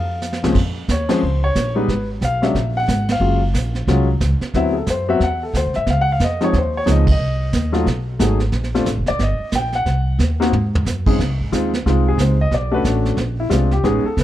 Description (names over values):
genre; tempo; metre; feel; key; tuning
jazz piano trio; 181 BPM; 4/4; swing 61% on 8ths; Bb minor; A4 = 440 Hz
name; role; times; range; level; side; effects
warm concert grand piano; melody; 0.0-14.2 s; Bb2 to G5; -20 LUFS; left 2 dB; plate reverb
upright bass; bass; 0.0-14.2 s; D1 to Ab2; -19 LUFS; equal; none
vintage brush drum kit; drums; 0.2-14.2 s; brushed snare drum, crash cymbal, hi-hat, kick drum, ride cymbal, snare drum, toms; -23 LUFS; right 2 dB; none
room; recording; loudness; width
light reverb; dark, warm production; -16 LUFS; side -13 dB against mid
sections
0.6-11.2 A section; 11.2-14.2 B section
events
drum fill 0.2-0.6, 10.2-10.9; band accent 1.1, 3.0, 7.0; grand piano solo 11.2-14.2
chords
0.0 F5; 0.6 Bbm; 1.9 Abm6; 2.5 Gbadd9; 3.2 Gbmaj9#11; 4.5 D13; 5.9 Dbmaj9; 7.2 Cm; 7.9 B7; 8.5 Bbmaj7; 9.2 Gm; 9.9 Cdim; 10.5 Ab7(no3); 11.2 Dbmaj9; 12.5 Cbm9; 13.2 Bb9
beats
0.22 | 0.55 0.88 1.22 1.55 | 1.88 2.22 2.55 2.88 | 3.21 3.55 3.88 4.21 | 4.54 4.88 5.21 5.54 | 5.87 6.21 6.54 6.87 | 7.20 7.53 7.87 8.20 | 8.53 8.86 9.20 9.53 | 9.86 10.19 10.52 10.86 | 11.19 11.52 11.85 12.18 | 12.52 12.85 13.18 13.51 | 13.84 14.18